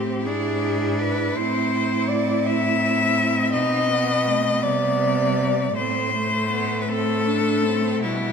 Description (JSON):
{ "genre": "classical, lyrical piece for cello ensemble", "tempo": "54 BPM (dotted quarters)", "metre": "6/8", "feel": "uneven beats, rubato", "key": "unclear", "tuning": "A4 = 438 Hz", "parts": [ { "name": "clear cello", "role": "melody", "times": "0.0-8.3 s", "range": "E4 to E5", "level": "-22 LUFS", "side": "left 4 dB", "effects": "none" }, { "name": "clear cello", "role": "second line", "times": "0.0-8.3 s", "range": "G3 to E4", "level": "-28 LUFS", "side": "right 9 dB", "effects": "none" }, { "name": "rich cello", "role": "accompaniment", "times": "0.0-8.3 s", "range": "G3 to D4", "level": "-26 LUFS", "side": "equal", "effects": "none" }, { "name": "rich cello", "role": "bass", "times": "0.0-8.3 s", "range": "G#2 to C3", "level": "-26 LUFS", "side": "right 1 dB", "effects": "none" } ], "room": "moderate scoring stage reverb, RT60 2.0 s", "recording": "none", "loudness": "-19 LUFS", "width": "side -6 dB against mid", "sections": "0.0-8.3 A section", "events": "none", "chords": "0.3 E7/G#; 1.4 Am; 3.5 B; 4.6 C5; 5.8 Am" }